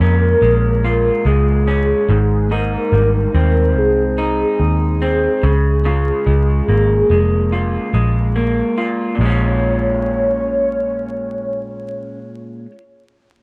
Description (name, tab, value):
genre	indie pop, bedroom pop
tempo	72 BPM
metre	4/4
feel	straight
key	Bb minor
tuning	A4 = 440 Hz
part	soft octave-layered synth lead	melody	0.0-12.2 s	Ab4 to Db5	-21 LUFS	equal	phaser, ensemble chorus, analog delay
part	electric guitar through a small old amp	accompaniment	0.0-12.8 s	Ab2 to F4	-23 LUFS	equal	subtle chorus, warbly pitch drift
part	vintage muted picked electric bass	bass	0.0-12.2 s	F1 to F2	-18 LUFS	equal	none
room	little or no reverb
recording	vinyl crackle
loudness	-16 LUFS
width	mono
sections	0.0-9.2 A section; 9.2-12.5 B section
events	none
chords	0.0 Bbm7; 2.1 Abmaj7; 5.4 Db6; 9.2 Bbm7